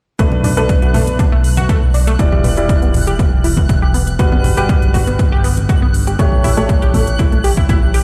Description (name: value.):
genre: progressive house.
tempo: 120 BPM.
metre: 4/4.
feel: straight.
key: B minor.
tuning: A4 = 445 Hz.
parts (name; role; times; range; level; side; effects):
tight sequenced synth; arpeggios; 0.2-8.0 s; A3 to G4; -24 LUFS; equal; chorus, sidechain pumping, tape echo.
warm baby grand piano; stabs; 0.2-8.0 s; G3 to D5; -24 LUFS; equal; vintage 12-bit sampler grit, sidechain pumping, tape echo.
fat analog bass; bass; 0.2-8.0 s; E1 to B1; -20 LUFS; equal; sidechain pumping.
electronic hi-hat; drums; 0.2-8.0 s; none; -31 LUFS; equal; overdrive.
electronic kick drum; drums; 0.2-7.8 s; none; -16 LUFS; equal; overdrive.
twinkling granular texture; texture; 0.7-8.0 s; F#6; -32 LUFS; equal; built-in reverb, sidechain pumping.
congas; percussion; 0.3-7.7 s; none; -23 LUFS; equal; sidechain pumping on perc.
room: digital ambience.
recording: played on a big sound system in a bare room, stone room reverb, lossy compression artefacts.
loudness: -14 LUFS.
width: mono.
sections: 0.2-8.0 A section.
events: none.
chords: 0.2 Bm7; 2.2 Em7; 4.2 Gmaj7; 6.2 A7.